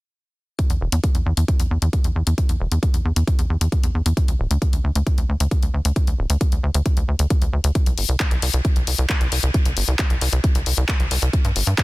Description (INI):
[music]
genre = uplifting trance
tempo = 134 BPM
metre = 4/4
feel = straight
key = unclear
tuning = A4 = 440 Hz
[part]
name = electronic kick drum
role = drums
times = 0.6-11.8 s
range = none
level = -20 LUFS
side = equal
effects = studio reverb
[part]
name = house drum kit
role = drums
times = 0.6-11.8 s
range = handclaps, hi-hat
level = -25 LUFS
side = left 3 dB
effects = studio reverb
[part]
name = tight sequencer bass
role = bass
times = 0.7-11.7 s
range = D1 to G2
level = -20 LUFS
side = equal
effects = sidechain pumping
[sound]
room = little or no reverb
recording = dense, heavily limited modern master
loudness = -18 LUFS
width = side -21 dB against mid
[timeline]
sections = 0.6-11.8 A section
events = none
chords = none